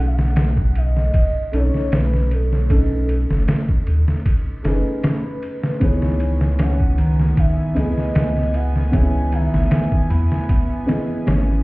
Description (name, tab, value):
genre	trip hop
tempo	77 BPM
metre	4/4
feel	swing 53% on 16ths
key	C# minor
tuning	A4 = 440 Hz
part	pure breathy sine lead	melody	0.0-10.1 s	A4 to G#5	-29 LUFS	equal	wide subtle chorus, tape echo
part	felt-muted upright piano	accompaniment	0.0-11.6 s	D#3 to E5	-25 LUFS	equal	harmonic tremolo, vintage 12-bit sampler grit
part	warm sub bass	bass	0.0-11.6 s	F#1 to E2	-18 LUFS	equal	none
part	trip hop sampler-style drum kit	drums	0.2-11.5 s	kick drum, ride cymbal, snare drum	-20 LUFS	equal	studio reverb
part	warm studio string section	sustained chords	5.8-11.6 s	B3 to G#5	-31 LUFS	equal	none
part	nylon-string guitar	arpeggios	5.8-11.6 s	D#3 to E4	-25 LUFS	right 1 dB	tape echo
room	small room reverb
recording	heard muffled through a wall, club reverb, EQ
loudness	-16 LUFS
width	side -21 dB against mid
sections	0.0-11.6 A section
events	none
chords	0.0 B13; 5.8 C#m9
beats	0.36 1.14 1.92 | 2.70 3.48 4.26 5.04 | 5.82 6.60 7.38 8.15 | 8.93 9.71 10.49 11.27